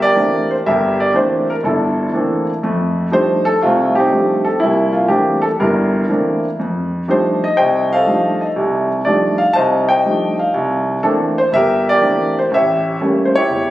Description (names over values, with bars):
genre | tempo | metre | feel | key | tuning
solo jazz | 122 BPM | 4/4 | swing 68% on 8ths | C mixolydian | A4 = 440 Hz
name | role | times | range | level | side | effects
warm concert grand piano | solo | 0.0-13.7 s | E1 to A5 | -13 LUFS | equal | none
room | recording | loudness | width
moderate scoring stage reverb, RT60 1.8 s | recorded on a phone in the room, club reverb | -13 LUFS | side -15 dB against mid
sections
0.0-13.7 A section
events
none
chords
0.0 C13; 2.6 F13; 4.6 C13; 6.6 F13; 10.5 C13; 12.5 A7b9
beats
0.16 | 0.65 1.15 1.64 2.13 | 2.63 3.12 3.62 4.11 | 4.60 5.10 5.59 6.08 | 6.58 7.07 7.57 8.06 | 8.55 9.05 9.54 10.04 | 10.53 11.03 11.52 12.01 | 12.51 13.00 13.50